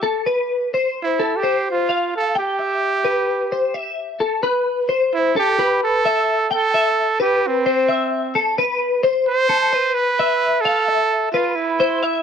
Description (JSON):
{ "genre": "rock", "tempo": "261 BPM (eighths)", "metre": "9/8", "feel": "straight", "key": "C major", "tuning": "A4 = 439 Hz", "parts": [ { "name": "twelve-string electric guitar", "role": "arpeggios", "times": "0.0-12.2 s", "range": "A4 to G5", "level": "-19 LUFS", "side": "left 3 dB", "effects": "ensemble chorus" }, { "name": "breathy trumpet", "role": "melody", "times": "1.0-12.2 s", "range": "C4 to C5", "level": "-19 LUFS", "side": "right 4 dB", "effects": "none" } ], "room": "small room ambience", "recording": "dry, close 1970s-style studio recording", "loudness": "-16 LUFS", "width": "side -7 dB against mid", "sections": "0.0-4.4 A section; 4.4-12.2 B section", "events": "none", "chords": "0.3 F(#11); 2.4 Cmaj7 (rootless); 4.4 Cmaj7; 8.6 Fmaj7(no3) (rootless)" }